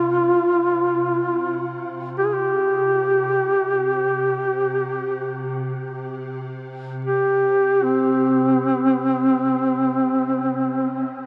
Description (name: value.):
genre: caucasian folk, Caucasian lament.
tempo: free time.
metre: none.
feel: none.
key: unclear.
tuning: A4 = 440 Hz.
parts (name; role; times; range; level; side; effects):
dark duduk; melody; 0.0-11.2 s; C4 to Ab4; -21 LUFS; equal; diffuse ambient delay.
evolving wavetable pad; drone; 0.0-11.3 s; C3; -35 LUFS; equal; ensemble chorus, built-in reverb, phaser.
room: wet huge ambient reverb, RT60 7.2 s.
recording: dreamy mix soaked in reverb.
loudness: -21 LUFS.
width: mono.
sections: 0.0-11.3 A section.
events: none.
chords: none.